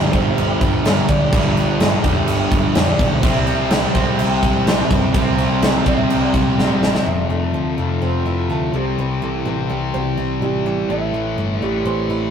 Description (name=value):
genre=quiet-loud alternative rock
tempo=125 BPM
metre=4/4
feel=straight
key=unclear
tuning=A4 = 440 Hz
part: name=electric guitar through a small old amp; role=melody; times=0.0-12.3 s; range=G4 to E5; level=-28 LUFS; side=right 1 dB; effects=none
part: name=crunchy overdriven guitar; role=riff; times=0.0-7.1 s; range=G2 to C4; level=-23 LUFS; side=right 1 dB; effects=none
part: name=high-gain distorted guitar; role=riff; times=0.0-7.1 s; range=G2 to C4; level=-24 LUFS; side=right 6 dB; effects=distortion
part: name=thick fuzz guitar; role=riff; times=0.0-12.3 s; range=F2 to C4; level=-21 LUFS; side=left 4 dB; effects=distortion
part: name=hollow-body short-scale picked electric bass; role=bass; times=0.0-12.3 s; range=F1 to A2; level=-25 LUFS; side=equal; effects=none
part: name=big rock drum kit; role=drums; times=0.1-7.1 s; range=crash cymbal, kick drum, snare drum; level=-18 LUFS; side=right 1 dB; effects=none
part: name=picked swing-style acoustic guitar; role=arpeggios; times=7.1-12.3 s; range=A2 to E4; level=-25 LUFS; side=right 5 dB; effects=none
room=wet stone room reverb, RT60 1.2 s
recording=rough rehearsal-room recording, tube saturation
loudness=-15 LUFS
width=side -8 dB against mid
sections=0.0-7.1 A section; 7.1-12.3 B section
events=drum fill 6.6-7.1; half time 7.1-12.3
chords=0.0 G5; 3.2 C; 7.1 Fmaj7; 8.7 C; 10.9 Am7